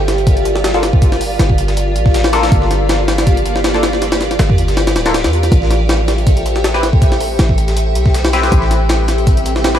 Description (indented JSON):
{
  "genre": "drum and bass, jungle",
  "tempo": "160 BPM",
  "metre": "4/4",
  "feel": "swing 54% on 16ths",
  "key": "G dorian",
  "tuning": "A4 = 440 Hz",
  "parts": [
    { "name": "granular cloud pad", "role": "sustained chords", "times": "0.0-9.8 s", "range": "F4 to G5", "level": "-18 LUFS", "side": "right 1 dB", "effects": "built-in reverb, vintage 12-bit sampler grit" },
    { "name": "warm 808-style bass", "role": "bass", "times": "0.0-9.8 s", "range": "D1 to E2", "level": "-16 LUFS", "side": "equal", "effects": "tube saturation" },
    { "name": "breakbeat sampler-style drum kit", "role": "drums", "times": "0.1-9.7 s", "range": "hi-hat, snare drum", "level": "-28 LUFS", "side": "left 1 dB", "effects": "overdrive, high-pass filter on hats, studio ambience, high-pass filter on snare, high-pass filter on room" },
    { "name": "jungle sampler-style drum kit", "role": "drums", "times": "0.1-9.8 s", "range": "hi-hat, kick drum, snare drum", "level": "-14 LUFS", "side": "equal", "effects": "studio ambience" },
    { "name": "band-passed chord stab", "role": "stabs", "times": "0.7-9.8 s", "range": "Bb3 to B4", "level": "-20 LUFS", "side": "left 3 dB", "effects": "phaser, lush chorus, dub echo" }
  ],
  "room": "little or no reverb",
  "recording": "vinyl crackle",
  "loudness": "-11 LUFS",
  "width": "side -10 dB against mid",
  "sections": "0.0-9.8 A section",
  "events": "none",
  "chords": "0.0 Gm7; 5.5 Am7",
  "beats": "0.27 0.64 | 1.02 1.39 1.77 2.14 | 2.52 2.89 3.27 3.64 | 4.02 4.39 4.77 5.14 | 5.52 5.89 6.27 6.64 | 7.02 7.39 7.77 8.14 | 8.52 8.89 9.27 9.64"
}